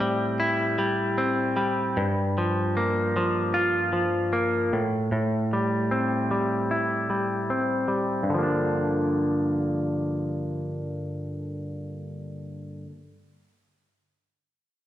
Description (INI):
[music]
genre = indie pop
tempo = 76 BPM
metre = 4/4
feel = swing 55% on 16ths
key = G dorian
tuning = A4 = 441 Hz
[part]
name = direct-recorded clean electric guitar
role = solo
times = 0.0-13.0 s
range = G2 to F4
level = -24 LUFS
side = equal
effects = warbly pitch drift, low-pass filter
[sound]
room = wet recital hall reverb, RT60 1.5 s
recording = recorded in a church or concert hall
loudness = -23 LUFS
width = side -12 dB against mid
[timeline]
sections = 0.0-8.3 A section; 8.3-11.5 B section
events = filter sweep on clean electric guitar 0.0-8.3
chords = 0.0 Am7; 2.0 Gm7; 4.7 Am7; 8.3 Gm7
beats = 0.40 1.19 | 1.98 2.77 3.55 4.34 | 5.13 5.92 6.71 7.50 | 8.29 9.08 9.87 10.66